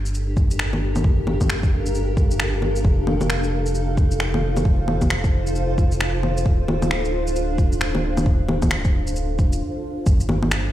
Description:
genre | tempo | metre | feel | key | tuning
future garage | 133 BPM | 4/4 | swing 61% on 16ths | unclear | A4 = 440 Hz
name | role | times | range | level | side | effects
granular cloud pad | sustained chords | 0.0-10.7 s | D4 to F5 | -26 LUFS | equal | built-in reverb, sidechain pumping
soft dub sub bass | bass | 0.0-10.7 s | D1 to G1 | -24 LUFS | equal | tube saturation, sidechain pumping
electronic shaker, finger snaps and bongos | drums | 0.1-10.6 s | none | -24 LUFS | left 1 dB | small room reverb
electronic kick drum | drums | 0.4-10.2 s | none | -18 LUFS | equal | small room reverb
room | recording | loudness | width
light reverb, digital ambience | played on a big sound system in a bare room, large studio reverb | -18 LUFS | side -13 dB against mid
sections
0.0-10.1 A section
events
stop 9.6-10.1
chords
0.0 Gm9; 2.8 F7; 6.5 Dm7; 10.1 N.C.

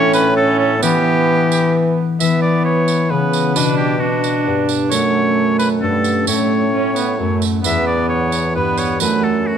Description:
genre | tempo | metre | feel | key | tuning
classical, renaissance-style consort dance | 132 BPM | 3/4 | straight | E dorian | A4 = 440 Hz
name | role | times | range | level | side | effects
bright oboe | melody | 0.0-9.6 s | F#4 to E5 | -20 LUFS | left 1 dB | none
warm viola | second line | 0.0-9.6 s | A3 to D4 | -20 LUFS | right 7 dB | none
concert harp | accompaniment | 0.0-9.6 s | E2 to F#4 | -19 LUFS | left 7 dB | none
warm bassoon | bass | 0.0-9.6 s | E2 to E3 | -20 LUFS | right 2 dB | none
tambourine | percussion | 0.1-9.2 s | none | -25 LUFS | right 13 dB | none
room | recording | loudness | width
moderate recital hall reverb, RT60 1.7 s | close, detailed microphones | -14 LUFS | side -8 dB against mid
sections
0.0-2.2 A section; 2.2-9.6 B section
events
none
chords
0.0 A; 0.8 Em; 2.2 E5; 3.6 Bm; 4.9 F#m; 6.3 A; 7.6 Em; 9.0 F#m

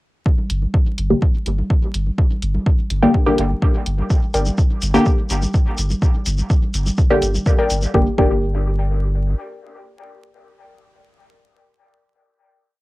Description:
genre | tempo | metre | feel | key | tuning
dub techno | 125 BPM | 4/4 | straight | G minor | A4 = 440 Hz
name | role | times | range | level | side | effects
electronic kick drum | drums | 0.3-8.3 s | none | -16 LUFS | equal | cassette tape
congas | percussion | 0.4-7.9 s | none | -32 LUFS | right 1 dB | sidechain pumping on perc, cassette tape, dub echo
soft dub sub bass | bass | 0.5-9.3 s | G1 | -20 LUFS | equal | sidechain pumping
electronic hi-hat | drums | 0.5-7.8 s | none | -30 LUFS | equal | cassette tape
filtered dub chord stab | stabs | 1.1-12.5 s | D3 to G4 | -19 LUFS | left 1 dB | phaser, sidechain pumping, cassette tape, dub echo
shekere | percussion | 4.1-7.9 s | none | -29 LUFS | left 1 dB | none
warbly dusty pluck | riff | 4.3-4.5, 7.6-12.5 s | Bb4 to G5 | -25 LUFS | left 2 dB | chorus, cassette tape, sidechain pumping, dub echo
room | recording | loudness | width
light reverb | home recording on cassette, vinyl crackle | -16 LUFS | side -19 dB against mid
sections
0.3-7.9 groove; 7.9-11.8 final chord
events
none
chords
0.3 Gm

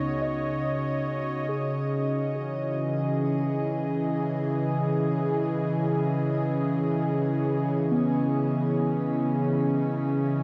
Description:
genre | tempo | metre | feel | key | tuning
ambient | free time | none | none | C# minor | A4 = 440 Hz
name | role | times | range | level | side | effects
warm analog pad | sustained chords | 0.0-10.4 s | C#3 to D#5 | -27 LUFS | equal | chorus, shimmer reverb
muted felt-like synth keys | arpeggios | 0.0-10.4 s | B3 to D#5 | -36 LUFS | equal | chorus, delay, shimmer reverb
warm sub bass | bass | 0.0-1.4 s | C#2 | -52 LUFS | equal | none
room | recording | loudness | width
wet scoring stage reverb, RT60 2.1 s | dark, warm production | -27 LUFS | mono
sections
0.0-1.5 A section; 1.5-10.4 B section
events
none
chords
0.0 C#9sus4; 1.5 C#madd9

